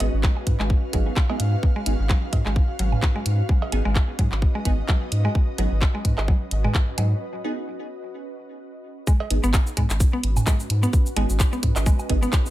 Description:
minimal techno; 129 BPM; 4/4; swing 56% on 16ths; G# dorian; A4 = 441 Hz
wavetable chord stab; stabs; 0.0-12.2 s; B3 to G#4; -32 LUFS; right 2 dB; wide subtle chorus, tape echo
saturated sub bass; bass; 0.0-12.3 s; G#1 to G#2; -22 LUFS; equal; sidechain pumping
garage drum kit; drums; 0.0-12.5 s; cabasa, handclaps, hi-hat; -29 LUFS; equal; studio reverb
electronic cowbell, woodblock and toms; percussion; 0.0-12.1 s; -32 LUFS; right 4 dB; studio reverb, tape echo
ethereal airy pad; texture; 0.0-12.5 s; C#4 to E#5; -34 LUFS; right 1 dB; ensemble chorus, built-in reverb, sidechain pumping
mallet-like synth pluck; riff; 0.2-12.3 s; F#3 to B3; -31 LUFS; equal; chorus, cassette tape, sidechain pumping, tape echo
electronic kick drum; drums; 0.2-12.4 s; -20 LUFS; equal; studio reverb
little or no reverb; -20 LUFS; side -15 dB against mid
0.0-9.1 A section; 9.1-12.5 B section
break 7.2-9.1; drop 9.1-12.5
0.0 G#m

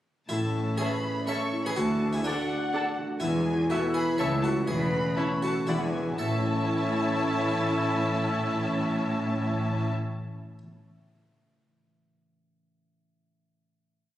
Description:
cinematic, playful, whimsical film cue; 123 BPM; 3/4; straight; A major; A4 = 441 Hz
harpsichord; melody; 0.3-10.6 s; D4 to A4; -33 LUFS; equal
rich chamber violin section; melody; 0.3-9.9 s; F#5 to C#6; -37 LUFS; left 3 dB
dark clarinet; second line; 0.3-9.9 s; F#4 to D5; -36 LUFS; left 1 dB
mellow French horn section; sustained chords; 0.3-9.9 s; E3 to E4; -32 LUFS; equal
concert harp; arpeggios; 0.3-10.8 s; A2 to A5; -35 LUFS; left 3 dB
clear chamber cello section; bass; 0.3-9.9 s; C#2 to A2; -32 LUFS; right 1 dB
clear chamber double bass section; bass; 0.3-9.9 s; E1 to D2; -34 LUFS; right 1 dB
bright silver concert flute; second line; 0.8-9.9 s; E5 to B5; -40 LUFS; equal
rich chamber violin section; second line; 0.8-9.9 s; E5 to B5; -37 LUFS; left 2 dB
warm cor anglais; second line; 0.8-9.9 s; C#5 to E5; -38 LUFS; right 1 dB
rich studio viola section; accompaniment; 0.8-9.9 s; B3 to A4; -35 LUFS; right 1 dB
moderate scoring stage reverb, RT60 1.8 s; recorded on a phone in the room, studio reverb; -25 LUFS; side -12 dB against mid
0.3-6.2 A section; 6.2-9.1 final chord
0.3 A; 1.8 D; 3.2 E; 4.2 A/C#; 4.7 A/E; 5.7 E9; 6.2 A

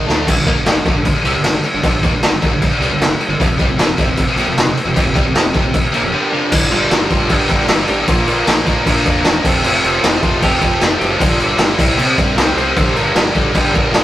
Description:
hard rock; 154 BPM; 4/4; straight; G minor; A4 = 439 Hz
lush unison pad; sustained chords; 0.1-14.0 s; F3 to C6; -31 LUFS; equal
heavy high-gain guitar; riff; 0.0-14.0 s; F2 to D4; -23 LUFS; left 6 dB; distortion
high-gain distorted guitar; riff; 0.0-14.0 s; F2 to E4; -23 LUFS; equal; distortion
overdriven electric guitar; riff; 0.0-14.0 s; F2 to D4; -22 LUFS; right 4 dB
growling fingered electric bass; bass; 0.0-14.0 s; E1 to C3; -24 LUFS; equal; overdrive
raw garage drum kit; drums; 0.1-14.0 s; crash cymbal, kick drum, snare drum; -14 LUFS; equal
lightly driven lead guitar; melody; 6.3-14.0 s; C4 to C5; -23 LUFS; equal
light reverb; rough rehearsal-room recording; -12 LUFS; side -14 dB against mid
0.3-6.5 A section; 6.5-14.0 B section
drum fill 0.0
0.3 Gm; 3.4 F5; 6.5 Gm; 8.1 Bb; 9.4 F; 11.2 Gm; 11.8 C; 12.8 Gm

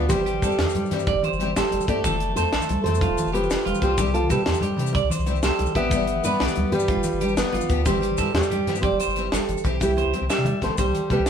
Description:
highlife guitar band; 124 BPM (dotted quarters); 12/8; straight; C major; A4 = 440 Hz
fingerpicked steel-string acoustic guitar; melody; 0.0-11.3 s; E4 to E5; -25 LUFS; right 1 dB
clear alto saxophone; second line; 0.0-11.3 s; E3 to B3; -32 LUFS; left 7 dB
picked steel-string acoustic guitar; accompaniment; 0.0-11.2 s; E3 to A4; -33 LUFS; left 8 dB
clean electric guitar; arpeggios; 0.0-11.3 s; F4 to E5; -28 LUFS; right 6 dB; warbly pitch drift
pure sine sub bass; bass; 0.0-11.3 s; F1 to C3; -27 LUFS; equal
congas; percussion; 0.0-11.3 s; -29 LUFS; left 1 dB
tight funk drum kit; drums; 0.1-11.3 s; hi-hat, kick drum, snare drum; -27 LUFS; left 1 dB
maracas; percussion; 0.1-11.3 s; -38 LUFS; left 7 dB
moderate stone room reverb, RT60 1.0 s; band playing live in one room; -20 LUFS; side -8 dB against mid
0.0-9.8 A section; 9.8-11.3 B section
drum fill 9.0-9.8
0.1 C/G; 2.0 F; 4.0 C; 5.9 G; 7.9 C/G; 9.8 C

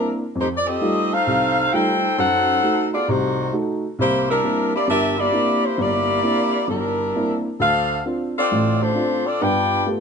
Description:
jazz; 132 BPM; 4/4; swing 66% on 8ths; C major; A4 = 440 Hz
mellow saxophone section; melody; 0.0-9.9 s; G3 to G5; -19 LUFS; left 1 dB
dark upright piano; accompaniment; 0.0-10.0 s; G1 to G4; -23 LUFS; equal
moderate echo chamber reverb, RT60 1.5 s; nothing above 10.8 kHz; -18 LUFS; side -6 dB against mid
0.0-10.0 A section
0.3 F9; 2.2 F#dim7; 4.0 C9; 7.6 Dm7; 9.4 G9

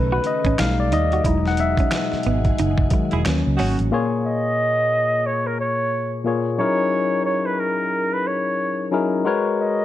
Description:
R&B, neo-soul; 90 BPM; 4/4; swing 60% on 16ths; A4 = 440 Hz
barky tine electric piano; accompaniment; 0.0-9.8 s; A#2 to F#5; -22 LUFS; left 3 dB; overdrive
soft string machine; sustained chords; 0.0-3.9 s; B2 to G#4; -32 LUFS; right 1 dB; ensemble chorus
vintage muted fingered electric bass; bass; 0.0-3.9 s; E1 to D#2; -22 LUFS; right 1 dB
semi-hollow electric guitar; second line; 0.1-3.7 s; B3 to F#4; -28 LUFS; right 5 dB; slapback echo
dusty soul sampler-style drum kit; drums; 0.2-3.9 s; finger snaps, hi-hat, kick drum, snare drum; -23 LUFS; right 1 dB
clear saxophone section; stabs; 3.1-3.8 s; G#3 to G#4; -29 LUFS; right 3 dB
warm flugelhorn; melody; 4.3-9.8 s; A#4 to D#5; -21 LUFS; right 1 dB; slapback echo
light reverb; -18 LUFS; side -13 dB against mid
0.0-3.9 A section; 3.9-9.8 B section
tine electric piano solo 0.0-3.9; band accent 1.2-3.9
0.0 B9; 0.6 B7b13; 1.2 Emaj7; 3.2 D#m7; 3.9 A#m7; 6.6 F#13; 9.2 G#m11

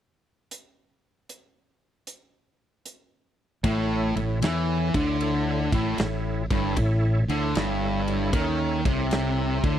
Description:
blues rock power trio and southern rock; 77 BPM; 4/4; swing 67% on 8ths; A mixolydian; A4 = 442 Hz
big rock drum kit; drums; 0.5-9.8 s; hi-hat, kick drum, ride cymbal, snare drum; -28 LUFS; equal
bright tonewheel organ; sustained chords; 3.6-9.8 s; C#4 to G5; -33 LUFS; right 4 dB; slow rotary speaker, chorus vibrato
thick fuzz guitar; riff; 3.6-9.8 s; G2 to E3; -25 LUFS; left 1 dB; distortion
modern bright fingered electric bass; bass; 3.6-9.8 s; G1 to E2; -29 LUFS; equal
little or no reverb; dry, close 1970s-style studio recording; -22 LUFS; side -10 dB against mid
0.5-3.6 A section; 3.6-9.8 B section
0.5 N.C.; 3.6 A

